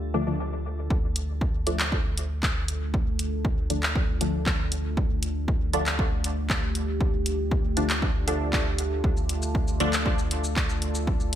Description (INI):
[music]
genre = dub techno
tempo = 118 BPM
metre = 4/4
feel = straight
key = D minor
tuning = A4 = 440 Hz
[part]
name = deep dark ambient pad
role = sustained chords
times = 0.0-11.4 s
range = A3 to A4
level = -34 LUFS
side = equal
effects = chorus, built-in reverb, sidechain pumping
[part]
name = soft dub sub bass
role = bass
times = 0.0-11.4 s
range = D2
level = -30 LUFS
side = equal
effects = sidechain pumping
[part]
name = drifting glass-harmonics texture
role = texture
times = 0.0-0.9 s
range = A4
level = -50 LUFS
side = left 2 dB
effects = chorus, built-in reverb, sidechain pumping
[part]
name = filtered dub chord stab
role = stabs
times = 0.1-9.9 s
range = D3 to D4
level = -30 LUFS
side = left 1 dB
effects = chorus, phaser, sidechain pumping, dub echo
[part]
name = electronic kick drum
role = drums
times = 0.9-11.2 s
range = none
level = -27 LUFS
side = equal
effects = none
[part]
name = punchy analog drum machine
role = drums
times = 1.2-11.4 s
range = handclaps, hi-hat, shaker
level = -30 LUFS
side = equal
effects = gated reverb
[sound]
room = light reverb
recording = bright 1980s-style digital production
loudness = -24 LUFS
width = side -11 dB against mid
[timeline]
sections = 0.9-11.4 A section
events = none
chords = 0.0 Dm